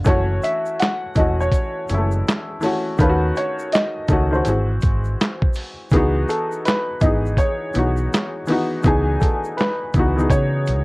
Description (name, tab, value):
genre	lo-fi hip hop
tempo	82 BPM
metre	4/4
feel	swing 63% on 16ths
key	C# minor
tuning	A4 = 440 Hz
part	felt-muted upright piano	accompaniment	0.0-10.8 s	D#3 to G#5	-22 LUFS	left 1 dB	cassette tape, low-pass filter
part	egg shaker	percussion	0.0-10.8 s	none	-46 LUFS	right 3 dB	none
part	warm upright piano	melody	0.1-10.8 s	G#4 to F#5	-24 LUFS	equal	low-pass filter
part	vintage muted fingered electric bass	bass	0.1-10.8 s	E1 to C#3	-21 LUFS	equal	none
part	dusty soul sampler-style drum kit	drums	0.1-10.8 s	handclaps, hi-hat, kick drum, snare drum	-20 LUFS	equal	none
room	light reverb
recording	worn, warbling old tape, cassette tape, warbly pitch drift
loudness	-17 LUFS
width	side -23 dB against mid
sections	0.0-10.8 A section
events	drum fill 10.3-10.8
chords	0.1 F#m7; 3.0 D#m7b5; 4.5 G#aug7; 5.9 C#m11